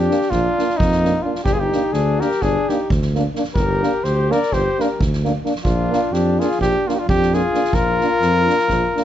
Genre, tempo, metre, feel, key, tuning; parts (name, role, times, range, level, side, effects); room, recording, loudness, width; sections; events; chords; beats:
balkan folk, Balkan brass band; 258 BPM (eighths); 9/8; straight; Bb mixolydian; A4 = 440 Hz
mellow cornet; melody; 0.0-9.0 s; Eb4 to D5; -20 LUFS; left 1 dB
mellow flugelhorn; second line; 0.0-9.0 s; Bb3 to Bb4; -23 LUFS; left 4 dB
mellow tuba; bass; 0.0-8.8 s; G1 to F2; -21 LUFS; right 1 dB
clear euphonium; accompaniment; 0.1-9.0 s; Bb3; -25 LUFS; right 6 dB
mellow French horn; accompaniment; 0.1-9.0 s; D4; -25 LUFS; left 2 dB
soft-mallet drum kit; percussion; 0.1-9.0 s; kick drum, snare drum; -25 LUFS; right 1 dB
light reverb; nothing above 7.9 kHz; -16 LUFS; side -11 dB against mid
0.0-9.0 A section
0.0 Bb; 1.5 Gm; 5.6 Bb
0.05 0.28 0.52 0.75 0.98 1.22 | 1.45 1.69 1.92 2.15 2.39 2.62 2.85 3.08 3.32 | 3.55 3.78 4.02 4.25 4.48 4.71 4.95 5.18 5.41 | 5.64 5.88 6.11 6.34 6.57 6.80 7.04 7.27 7.50 | 7.73 7.96 8.20 8.43 8.66 8.89